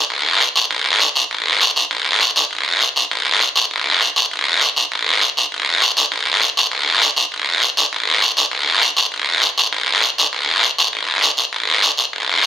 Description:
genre	latin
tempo	200 BPM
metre	4/4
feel	straight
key	none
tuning	none
part	guiro	percussion	0.1-12.5 s	none	-13 LUFS	equal	none
room	moderate studio reverb, RT60 0.7 s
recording	none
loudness	-13 LUFS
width	side -10 dB against mid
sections	0.0-7.9 A section; 7.9-12.5 B section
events	none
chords	none

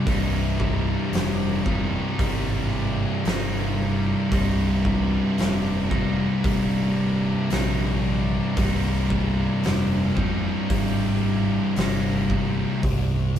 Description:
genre	stoner and doom metal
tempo	56 BPM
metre	4/4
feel	straight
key	C minor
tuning	A4 = 439 Hz
part	thick fuzz guitar	riff	0.0-13.3 s	C2 to C3	-25 LUFS	left 4 dB	distortion
part	thick fuzz guitar	riff	0.0-13.4 s	C2 to C3	-28 LUFS	right 5 dB	distortion
part	tight distorted guitar	riff	0.0-12.8 s	C2 to Eb4	-31 LUFS	right 1 dB	distortion
part	overdriven picked electric bass	bass	0.1-13.4 s	C1 to Bb1	-28 LUFS	equal	none
part	oversized low-tuned drum kit	drums	0.1-13.4 s	hi-hat, kick drum, snare drum	-28 LUFS	equal	none
room	moderate stone room reverb, RT60 1.1 s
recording	band playing live in one room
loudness	-21 LUFS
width	side -10 dB against mid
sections	0.0-12.8 A section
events	none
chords	0.0 Cm; 12.8 N.C.

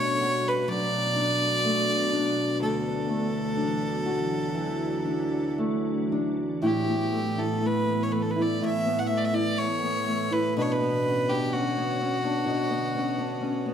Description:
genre	celtic folk, Celtic slow air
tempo	62 BPM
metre	4/4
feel	rubato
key	A major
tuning	A4 = 440 Hz
part	clear fiddle	melody	0.0-13.7 s	F#4 to F#5	-28 LUFS	equal	none
part	nylon-string guitar	accompaniment	0.0-13.7 s	D2 to F#4	-27 LUFS	left 1 dB	none
part	soft additive organ-like pad	sustained chords	0.0-13.7 s	A2 to C#5	-33 LUFS	right 1 dB	ensemble chorus, built-in reverb
room	wet recital hall reverb, RT60 1.4 s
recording	none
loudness	-24 LUFS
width	side -8 dB against mid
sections	0.0-6.6 A section; 6.6-13.7 B section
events	none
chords	0.0 Bm7; 2.6 Dadd9; 6.6 Asus2; 10.6 Bmadd9

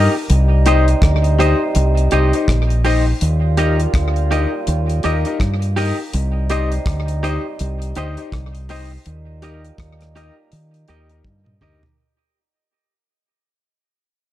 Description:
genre	roots reggae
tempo	82 BPM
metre	4/4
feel	swing 60% on 16ths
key	unclear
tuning	A4 = 439 Hz
part	semi-hollow electric guitar	accompaniment	0.0-11.9 s	G4 to Eb5	-24 LUFS	right 6 dB	spring reverb, tape echo, plate reverb
part	bright concert grand piano	stabs	0.0-11.8 s	Eb4 to Eb5	-22 LUFS	left 7 dB	plate reverb
part	deep dub fingered electric bass	bass	0.0-11.8 s	Bb1 to Eb3	-16 LUFS	equal	none
part	muted trombone section	second line	0.3-11.6 s	Bb2 to F4	-26 LUFS	right 2 dB	tape echo, plate reverb
part	damped 70s drum kit	drums	0.3-12.0 s	hi-hat, kick drum, rim click, toms	-22 LUFS	equal	slapback echo
room	light reverb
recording	dark, warm production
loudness	-15 LUFS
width	side -13 dB against mid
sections	0.0-12.0 A section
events	fade-out 0.3-12.0; drum fill 11.3-12.0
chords	0.3 Cm; 3.2 Eb; 6.1 Cm; 9.1 Eb

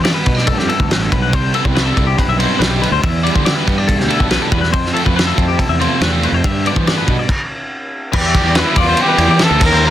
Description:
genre	math rock and midwest emo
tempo	141 BPM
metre	4/4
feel	straight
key	C major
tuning	A4 = 441 Hz
part	twelve-string electric guitar	accompaniment	0.0-7.3 s	E2 to G4	-22 LUFS	right 6 dB	none
part	twelve-string electric guitar	arpeggios	0.0-9.9 s	G4 to E5	-20 LUFS	left 9 dB	wide subtle chorus
part	fuzz fingered electric bass	bass	0.0-9.9 s	A1 to E3	-18 LUFS	equal	overdrive
part	loose indie drum kit	drums	0.0-9.8 s	crash cymbal, kick drum, ride cymbal, snare drum	-16 LUFS	equal	none
part	cranked stack guitar	riff	1.5-9.9 s	C3 to F4	-20 LUFS	right 1 dB	overdrive
part	warm trumpet	melody	8.2-9.9 s	E4 to Bb4	-16 LUFS	right 1 dB	slapback echo
room	little or no reverb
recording	dense, heavily limited modern master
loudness	-12 LUFS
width	side -12 dB against mid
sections	0.0-8.1 A section; 8.1-9.9 B section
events	stop 7.3-8.1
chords	0.0 G; 1.3 Cmaj7; 4.7 Fmaj7; 6.4 G7; 7.3 N.C.; 8.1 Em7

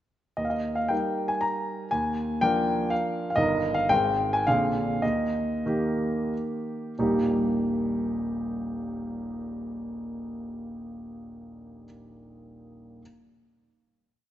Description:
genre	classical, romantic triple-time dance for piano with dotted rhythms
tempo	84-131 BPM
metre	3/4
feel	rubato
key	Eb major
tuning	A4 = 439 Hz
part	warm grand piano	solo	0.4-13.0 s	Eb1 to Bb5	-25 LUFS	equal	none
room	moderate concert hall reverb, RT60 1.9 s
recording	nothing above 8.0 kHz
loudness	-25 LUFS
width	side -12 dB against mid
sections	0.4-7.0 A section; 7.0-10.9 final chord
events	slowing down 2.7-7.0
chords	0.4 Eb; 1.9 Bb7/Eb; 3.4 Eb/G; 3.9 Ab; 4.5 Bb9; 5.0 Eb

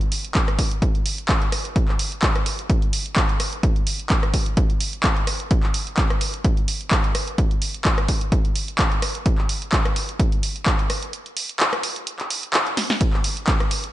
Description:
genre	house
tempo	128 BPM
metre	4/4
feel	swing 54% on 16ths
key	none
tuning	none
part	punchy analog drum machine	drums	0.0-13.9 s	handclaps, hi-hat, ride cymbal, rim click, snare drum	-23 LUFS	equal	none
part	electronic kick drum	drums	0.4-13.6 s	none	-20 LUFS	equal	none
room	little or no reverb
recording	nothing above 10.3 kHz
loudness	-19 LUFS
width	side -15 dB against mid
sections	0.0-13.9 A section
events	kick drops out 11.1-13.0; drum fill 12.8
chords	none

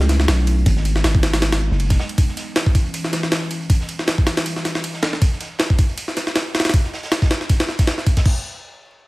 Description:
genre	drum and bass, jungle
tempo	158 BPM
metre	4/4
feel	swing 55% on 16ths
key	unclear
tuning	A4 = 439 Hz
part	warbly tape-like pad	sustained chords	0.0-5.2 s	E3 to E4	-29 LUFS	equal	chorus, built-in reverb
part	long sustained 808-style bass	bass	0.0-2.0 s	F#1 to C#2	-17 LUFS	equal	none
part	jungle sampler-style drum kit	drums	0.0-8.3 s	crash cymbal, kick drum, ride cymbal, snare drum	-18 LUFS	equal	none
part	raw garage drum kit	drums	0.1-8.3 s	hi-hat, snare drum	-33 LUFS	right 2 dB	high-pass filter on hats, high-pass filter on snare, high-pass filter on room
room	little or no reverb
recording	vinyl crackle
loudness	-16 LUFS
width	side -21 dB against mid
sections	0.0-8.3 A section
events	none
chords	0.0 F#m7; 0.7 G#m7; 2.2 C#m7; 3.7 Em7; 5.2 N.C.

